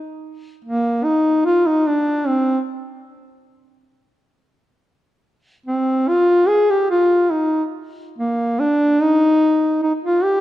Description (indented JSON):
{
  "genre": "mexican folk",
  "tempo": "free time",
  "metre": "none",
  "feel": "none",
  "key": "Eb major",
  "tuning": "A4 = 441 Hz",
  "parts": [
    { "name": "mellow duduk", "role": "solo", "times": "0.6-2.6, 5.7-10.4 s", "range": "Bb3 to Ab4", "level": "-16 LUFS", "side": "equal", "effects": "none" }
  ],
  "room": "moderate scoring stage reverb, RT60 2.1 s",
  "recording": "none",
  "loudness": "-15 LUFS",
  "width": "side -14 dB against mid",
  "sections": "0.2-10.2 A section",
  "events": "none",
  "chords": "none"
}